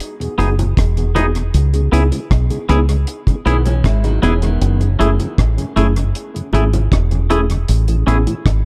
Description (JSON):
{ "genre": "lovers rock reggae", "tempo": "78 BPM", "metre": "4/4", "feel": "straight", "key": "C# minor", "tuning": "A4 = 439 Hz", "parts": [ { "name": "deep reggae drum kit", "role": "drums", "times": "0.0-8.6 s", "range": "hi-hat, kick drum, rim click", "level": "-22 LUFS", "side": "equal", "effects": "tape echo" }, { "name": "mellow tonewheel organ", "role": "accompaniment", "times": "0.2-8.3 s", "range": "E2 to G#4", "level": "-28 LUFS", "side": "equal", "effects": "slow rotary speaker" }, { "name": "mellow tine electric piano", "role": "accompaniment", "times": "0.4-8.2 s", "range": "A3 to G#4", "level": "-26 LUFS", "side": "equal", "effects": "tape echo" }, { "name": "twangy electric guitar", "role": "stabs", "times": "0.4-8.2 s", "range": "A3 to G#4", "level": "-24 LUFS", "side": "equal", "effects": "subtle chorus" }, { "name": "deep dub fingered electric bass", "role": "bass", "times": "0.4-8.6 s", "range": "E1 to C#2", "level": "-17 LUFS", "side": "equal", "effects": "none" }, { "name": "bongos", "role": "percussion", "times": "0.4-8.4 s", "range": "none", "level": "-29 LUFS", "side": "equal", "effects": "none" }, { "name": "electric guitar through a small old amp", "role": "arpeggios", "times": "3.5-4.8 s", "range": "D#3 to E4", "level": "-29 LUFS", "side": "equal", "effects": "spring reverb, tape echo" } ], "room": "small room ambience", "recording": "dark, warm production", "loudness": "-16 LUFS", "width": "mono", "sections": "0.0-8.7 A section", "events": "none", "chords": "0.0 Emaj7; 1.5 C#m7; 4.6 F#m9; 7.7 Amaj7" }